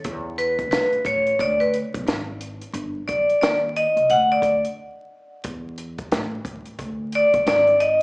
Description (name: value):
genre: hip hop, jazz-hop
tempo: 89 BPM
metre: 4/4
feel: swing 62% on 16ths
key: D major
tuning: A4 = 440 Hz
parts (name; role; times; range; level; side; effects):
- compact cocktail drum kit; drums; 0.0-8.0 s; hi-hat, kick drum, snare drum; -27 LUFS; equal; slapback echo
- upright bass; bass; 0.1-8.0 s; G1 to E2; -31 LUFS; equal; none
- vibraphone with hard mallets; accompaniment; 0.4-8.0 s; B4 to F#5; -18 LUFS; equal; slapback echo
room: light reverb, small room ambience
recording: live gig heard through the venue's PA, club reverb, vinyl crackle, small speaker sound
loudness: -18 LUFS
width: side -28 dB against mid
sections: 0.0-8.0 A section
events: vibraphone solo 0.0-8.0; break 4.8-5.4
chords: 0.1 E5; 0.7 Aadd9; 1.4 Bm; 2.1 N.C.; 2.7 G; 3.4 Cmadd9; 4.1 D; 5.4 N.C.; 6.8 Bm; 7.5 G#5